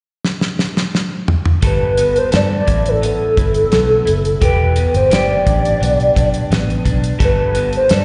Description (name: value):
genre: indie pop, bedroom pop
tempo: 86 BPM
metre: 4/4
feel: straight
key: G major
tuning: A4 = 440 Hz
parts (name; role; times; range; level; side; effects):
- damped 70s drum kit; drums; 0.2-8.0 s; hi-hat, kick drum, snare drum, toms; -20 LUFS; equal; none
- electric guitar through a small old amp; accompaniment; 1.6-8.0 s; E3 to A4; -25 LUFS; equal; analog chorus, warbly pitch drift, slapback echo
- vintage muted fingered electric bass; bass; 1.6-8.0 s; E1 to G2; -20 LUFS; equal; none
- warbly nostalgic lead; melody; 1.7-8.0 s; A4 to D5; -18 LUFS; equal; subtle chorus, slapback echo, tape echo
room: light reverb, small room ambience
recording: live gig heard through the venue's PA, recital hall reverb, nothing above 10.3 kHz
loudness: -15 LUFS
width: mono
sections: 0.0-1.6 A section; 1.6-8.0 B section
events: drum fill 0.2-1.6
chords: 0.0 N.C.; 1.6 G69; 4.4 Em7; 7.2 Gadd9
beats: 0.23 0.93 | 1.63 2.33 3.02 3.72 | 4.42 5.11 5.81 6.51 | 7.20 7.90